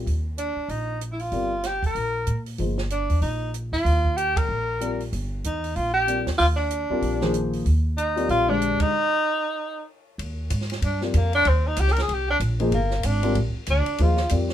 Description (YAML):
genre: modal jazz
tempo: 190 BPM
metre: 4/4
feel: swing 61% on 8ths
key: Eb major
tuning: A4 = 437 Hz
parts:
  - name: dark concert grand piano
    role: accompaniment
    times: 0.0-2.8, 4.8-8.9, 11.0-14.5 s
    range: D3 to D5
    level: -26 LUFS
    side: left 3 dB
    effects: none
  - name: upright bass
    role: bass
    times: 0.0-14.5 s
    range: G1 to Bb2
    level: -24 LUFS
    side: equal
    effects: none
  - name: compact cocktail drum kit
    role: drums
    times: 0.1-14.5 s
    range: hi-hat, kick drum, ride cymbal, snare drum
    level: -33 LUFS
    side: right 2 dB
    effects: none
  - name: warm tenor saxophone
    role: melody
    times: 0.4-14.3 s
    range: F3 to Bb4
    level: -24 LUFS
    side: equal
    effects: none
room: light reverb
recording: minimal, uncompressed stereo recording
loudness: -21 LUFS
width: side -11 dB against mid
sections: 0.0-10.2 A section; 10.2-14.5 B section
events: band accent 4.3, 8.8; stop 8.9-10.2; tenor saxophone solo 10.2-14.5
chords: 0.0 Ebmaj9